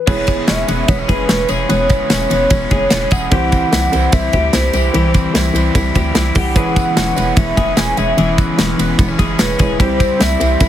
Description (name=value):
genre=jangly indie pop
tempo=148 BPM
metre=4/4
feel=straight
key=unclear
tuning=A4 = 440 Hz
part: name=warbly nostalgic lead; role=melody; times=0.0-10.7 s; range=B4 to G#5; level=-19 LUFS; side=equal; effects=chorus
part: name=bright upright piano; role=accompaniment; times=0.1-10.7 s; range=C4 to C#5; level=-27 LUFS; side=right 5 dB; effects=none
part: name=crunchy overdriven guitar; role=accompaniment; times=0.1-10.7 s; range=E2 to E4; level=-23 LUFS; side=right 6 dB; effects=none
part: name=twelve-string electric guitar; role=arpeggios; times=0.1-10.7 s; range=E3 to G#4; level=-20 LUFS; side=left 5 dB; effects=none
part: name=hollow knocking FM bass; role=bass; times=0.1-10.7 s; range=E1 to D2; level=-19 LUFS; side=equal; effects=none
part: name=modern studio drum kit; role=drums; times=0.1-10.7 s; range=crash cymbal, hi-hat, kick drum, ride cymbal, snare drum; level=-17 LUFS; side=equal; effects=none
part: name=tambourine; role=percussion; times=0.1-10.7 s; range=none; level=-31 LUFS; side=right 5 dB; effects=none
room=light reverb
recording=heavily compressed radio sound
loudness=-12 LUFS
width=side -11 dB against mid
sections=0.1-10.7 A section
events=none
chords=0.1 E6; 3.3 C; 6.6 E6; 9.8 C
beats=| 0.08 0.48 0.89 1.29 | 1.70 2.10 2.51 2.91 | 3.32 3.72 4.13 4.53 | 4.94 5.34 5.75 6.15 | 6.56 6.96 7.37 7.78 | 8.18 8.59 8.99 9.39 | 9.80 10.20 10.61